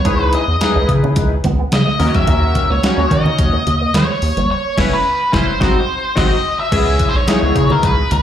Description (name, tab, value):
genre	early-eighties boogie funk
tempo	108 BPM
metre	4/4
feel	straight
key	C# dorian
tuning	A4 = 440 Hz
part	octave-fuzz lead guitar	melody	0.0-8.2 s	A#4 to E5	-18 LUFS	equal	distortion, slapback echo
part	chorused polysynth	accompaniment	0.0-8.0 s	D#3 to C#5	-20 LUFS	left 3 dB	slapback echo
part	electric guitar with an envelope filter	riff	0.1-4.5 s	G#3 to D#4	-26 LUFS	right 6 dB	ensemble chorus, slapback echo
part	rubbery square bass	bass	0.1-8.2 s	F#1 to D#3	-17 LUFS	equal	none
part	clean 12-bit digital drum machine	drums	0.1-8.2 s	crash cymbal, hi-hat, kick drum, snare drum	-19 LUFS	right 1 dB	none
part	congas	percussion	0.1-8.2 s	none	-23 LUFS	right 1 dB	none
room	light reverb, digital ambience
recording	live gig heard through the venue's PA, club reverb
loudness	-13 LUFS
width	side -10 dB against mid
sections	0.0-6.7 A section; 6.7-8.2 A section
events	band accent 4.5-6.7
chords	0.0 C#m9; 2.0 D#m7; 4.5 F#7sus4; 5.6 G#7; 6.7 C#m9